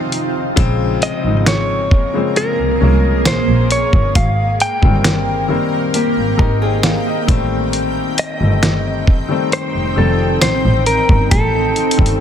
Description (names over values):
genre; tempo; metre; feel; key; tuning
contemporary R&B; 67 BPM; 4/4; straight; Bb dorian; A4 = 442 Hz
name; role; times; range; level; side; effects
warm baby grand piano; accompaniment; 0.0-12.2 s; Db3 to Bb5; -20 LUFS; left 4 dB; none
granular cloud pad; sustained chords; 0.0-12.2 s; C3 to G5; -22 LUFS; right 2 dB; built-in reverb
dusty soul sampler-style drum kit; drums; 0.1-12.2 s; hi-hat, kick drum, snare drum; -14 LUFS; equal; none
warm double bass; bass; 0.6-12.2 s; F1 to C2; -17 LUFS; equal; none
direct-recorded clean electric guitar; melody; 1.0-12.2 s; A4 to G5; -19 LUFS; equal; spring reverb, ping-pong delay
nylon-string guitar; arpeggios; 5.9-7.3 s; Bb3 to Bb4; -21 LUFS; left 3 dB; ping-pong delay
room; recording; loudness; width
little or no reverb; dense, heavily limited modern master; -13 LUFS; side -9 dB against mid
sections
0.0-12.2 A section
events
grand piano fill 5.9-7.7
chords
0.0 Dbmaj9 (rootless); 0.6 Bbm9; 4.2 Abmaj9; 7.3 F7